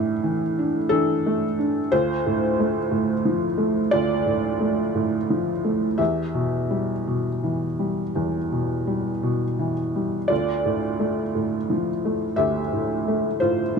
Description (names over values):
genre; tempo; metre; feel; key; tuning
neoclassical minimalist piano; 55-61 BPM; 4/4; rubato; D dorian; A4 = 436 Hz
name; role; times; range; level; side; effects
felt-muted upright piano; solo; 0.0-13.8 s; D2 to E5; -21 LUFS; equal; none
room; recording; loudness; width
light reverb; dark, warm production; -21 LUFS; side -5 dB against mid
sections
0.0-13.8 A section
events
none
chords
0.0 A7sus4; 1.9 Dm7; 6.0 Em; 10.3 Dm